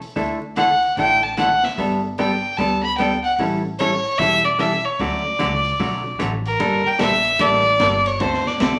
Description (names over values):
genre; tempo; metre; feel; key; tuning
country, western swing; 149 BPM; 4/4; swing 64% on 8ths; D major; A4 = 439 Hz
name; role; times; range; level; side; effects
swinging big-band drum kit; drums; 0.0-8.7 s; hi-hat, kick drum, ride cymbal, rim click, snare drum; -34 LUFS; equal; none
vintage hollow-body jazz guitar; accompaniment; 0.2-8.7 s; D3 to A4; -25 LUFS; equal; none
upright bass; bass; 0.2-8.8 s; E1 to D2; -33 LUFS; equal; none
clear fiddle; melody; 0.6-8.8 s; Bb4 to B5; -21 LUFS; equal; none
room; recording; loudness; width
wet large studio reverb, RT60 0.8 s; vinyl crackle; -19 LUFS; mono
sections
0.0-6.6 A section; 6.6-8.8 B section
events
none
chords
0.2 Dsus2; 1.8 Gadd9; 3.4 A7; 5.0 Dmaj7; 6.6 Gmadd9; 8.2 D7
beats
| 0.17 0.57 0.98 1.38 | 1.78 2.18 2.58 2.98 | 3.39 3.79 4.19 4.59 | 4.99 5.40 5.80 6.20 | 6.60 7.00 7.41 7.81 | 8.21 8.61